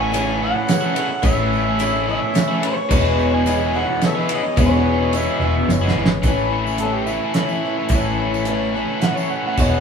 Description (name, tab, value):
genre	folk rock and heartland rock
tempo	108 BPM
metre	3/4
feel	straight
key	unclear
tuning	A4 = 439 Hz
part	overdriven harmonica	melody	0.0-9.8 s	A3 to G#5	-24 LUFS	right 2 dB	none
part	picked twelve-string acoustic guitar	accompaniment	0.0-9.8 s	E2 to E4	-23 LUFS	left 3 dB	none
part	accordion	sustained chords	0.0-9.8 s	E3 to C#5	-33 LUFS	equal	none
part	overdriven electric guitar	riff	0.0-9.8 s	E2 to E4	-22 LUFS	right 1 dB	none
part	hollow-body short-scale fingered electric bass	bass	0.0-9.8 s	E1 to A1	-23 LUFS	left 1 dB	none
part	damped 70s drum kit	drums	0.1-9.7 s	crash cymbal, hi-hat, kick drum, ride cymbal, snare drum	-22 LUFS	right 1 dB	none
part	tambourine	percussion	0.1-9.8 s	none	-39 LUFS	right 5 dB	none
room	wet stone room reverb, RT60 1.1 s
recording	band playing live in one room, small room reverb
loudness	-16 LUFS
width	side -6 dB against mid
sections	0.0-6.2 A section; 6.2-9.8 B section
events	drum fill 5.7-6.2; harmonica solo 6.2-9.8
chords	0.0 A; 2.9 E6; 6.2 A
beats	0.13 0.69 | 1.24 1.80 2.35 | 2.91 3.46 4.02 | 4.58 5.13 5.69 | 6.24 6.80 7.35 | 7.91 8.47 9.02 | 9.58